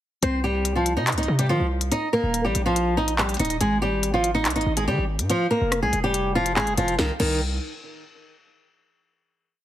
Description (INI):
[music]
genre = hip hop, drill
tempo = 142 BPM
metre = 4/4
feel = half-time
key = C minor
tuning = A4 = 442 Hz
[part]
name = flamenco guitar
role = melody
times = 0.2-7.4 s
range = Eb3 to Eb5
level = -22 LUFS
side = equal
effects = none
[part]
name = hard-hitting 808-style bass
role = bass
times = 0.2-7.6 s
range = Eb1 to Eb3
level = -26 LUFS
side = equal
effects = none
[part]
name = drill drum kit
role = drums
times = 0.2-7.3 s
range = crash cymbal, handclaps, hi-hat, rim click, snare drum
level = -26 LUFS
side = left 1 dB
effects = none
[sound]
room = light reverb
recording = heavily compressed radio sound, multiband compression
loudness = -20 LUFS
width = side -12 dB against mid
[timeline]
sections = 0.2-7.0 hook; 7.0-8.7 final chord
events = none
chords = 0.2 Cm; 1.9 Eb; 3.6 Ab5; 5.3 Fm; 7.0 N.C.